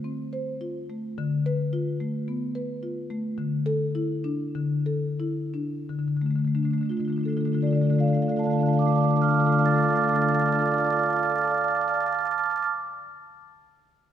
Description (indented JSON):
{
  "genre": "classical, contemporary piece for solo marimba",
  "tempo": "83-110 BPM",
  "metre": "4/4",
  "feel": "rubato",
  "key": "D dorian",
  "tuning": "A4 = 440 Hz",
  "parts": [
    { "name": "marimba with soft mallets", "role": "solo", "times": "0.0-12.7 s", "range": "D3 to A6", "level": "-23 LUFS", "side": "equal", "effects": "none" }
  ],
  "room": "wet concert hall reverb, RT60 2.3 s",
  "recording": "none",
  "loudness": "-23 LUFS",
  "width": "side -10 dB against mid",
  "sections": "0.0-1.2 A section; 1.2-5.9 B section; 5.9-11.2 C section",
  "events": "slowing down 0.0-5.9",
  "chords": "0.0 Dm7 (rootless); 1.2 Dm6; 3.4 Dsus2; 5.9 Dm",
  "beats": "0.04 0.62 | 1.18 1.73 2.28 2.84 | 3.39 3.95 4.55 5.20 | 5.90 6.57 7.24 7.91 | 8.57 9.24 9.91 10.58"
}